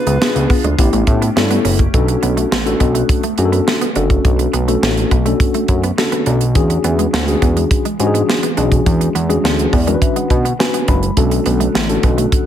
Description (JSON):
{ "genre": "early-eighties boogie funk", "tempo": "104 BPM", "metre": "4/4", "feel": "straight", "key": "B dorian", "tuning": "A4 = 440 Hz", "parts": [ { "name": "warm alto saxophone", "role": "melody", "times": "0.0-0.5 s", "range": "B4", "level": "-24 LUFS", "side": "right 1 dB", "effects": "tape echo" }, { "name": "mellow tine electric piano", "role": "accompaniment", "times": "0.0-12.5 s", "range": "B3 to B5", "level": "-18 LUFS", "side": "left 3 dB", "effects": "medium stereo tremolo" }, { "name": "glassy FM pad", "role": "sustained chords", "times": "0.0-12.5 s", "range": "C#3 to G4", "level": "-23 LUFS", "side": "left 1 dB", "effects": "ensemble chorus, built-in reverb" }, { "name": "semi-hollow electric guitar", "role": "riff", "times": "0.1-12.3 s", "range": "G#3 to D4", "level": "-24 LUFS", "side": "right 5 dB", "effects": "analog chorus" }, { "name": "fat analog bass", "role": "bass", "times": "0.1-12.3 s", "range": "F#1 to B2", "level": "-17 LUFS", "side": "equal", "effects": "none" }, { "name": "tight funk drum kit", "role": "drums", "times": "0.1-12.5 s", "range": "hi-hat, kick drum, snare drum", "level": "-16 LUFS", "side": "right 1 dB", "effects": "gated reverb" } ], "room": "little or no reverb", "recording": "none", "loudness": "-12 LUFS", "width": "side -10 dB against mid", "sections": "0.0-1.9 A section; 1.9-12.5 B section", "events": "tine electric piano fill 9.4-11.2", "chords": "0.0 C#7b9; 0.8 A9; 1.9 Bm9; 6.6 E13; 11.2 Bm9", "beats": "0.21 0.79 1.36 | 1.94 2.52 3.09 3.67 | 4.25 4.83 5.40 5.98 | 6.56 7.13 7.71 8.29 | 8.86 9.44 10.02 10.59 | 11.17 11.75 12.32" }